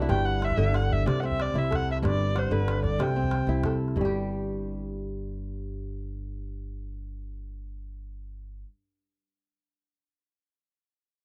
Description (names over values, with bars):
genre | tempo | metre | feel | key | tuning
west african traditional, West African string and xylophone music | 124 BPM (dotted quarters) | 12/8 | straight | unclear | A4 = 439 Hz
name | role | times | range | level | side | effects
kora | arpeggios | 0.0-8.8 s | G2 to F#5 | -33 LUFS | equal | none
upright bass | bass | 0.0-8.6 s | G1 to C2 | -32 LUFS | equal | none
calabash | percussion | 0.0-4.1 s | none | -37 LUFS | equal | none
dark erhu | melody | 0.1-3.6 s | B4 to G5 | -33 LUFS | equal | none
room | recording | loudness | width
studio reverb | dry, close 1970s-style studio recording | -27 LUFS | mono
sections
0.0-4.0 A section; 4.0-7.8 B section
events
none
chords
0.1 G5; 1.1 C; 2.0 G; 3.0 C; 4.0 N.C.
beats
| 0.10 0.58 1.06 1.54 | 2.03 2.51 2.99 3.48 | 3.96 4.44 4.93 5.41 | 5.89 6.38 6.87 7.35